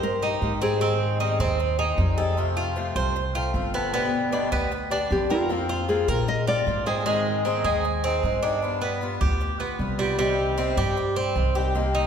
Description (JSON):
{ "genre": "latin", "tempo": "154 BPM", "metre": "4/4", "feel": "straight", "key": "C minor", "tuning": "A4 = 440 Hz", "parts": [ { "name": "nylon-string guitar", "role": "melody", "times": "0.0-1.0, 5.1-7.2 s", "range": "F4 to Eb5", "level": "-26 LUFS", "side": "left 1 dB", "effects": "none" }, { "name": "picked swing-style acoustic guitar", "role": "accompaniment", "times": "0.0-12.1 s", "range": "B2 to Ab4", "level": "-28 LUFS", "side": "left 3 dB", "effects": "none" }, { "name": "Cuban tres", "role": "arpeggios", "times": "0.0-12.1 s", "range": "G3 to C5", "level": "-26 LUFS", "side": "right 3 dB", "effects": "none" }, { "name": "upright bass", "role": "bass", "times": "0.0-12.1 s", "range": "G1 to Bb2", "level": "-27 LUFS", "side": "equal", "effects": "none" } ], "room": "wet concert hall reverb, RT60 1.7 s", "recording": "recorded in a church or concert hall", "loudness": "-22 LUFS", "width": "side -7 dB against mid", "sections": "0.0-11.8 A section", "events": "none", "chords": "0.0 Cm7; 0.8 Abmaj7; 2.4 F; 3.9 G; 5.5 Fsus4; 7.1 Ab; 8.6 G7; 10.2 Cm" }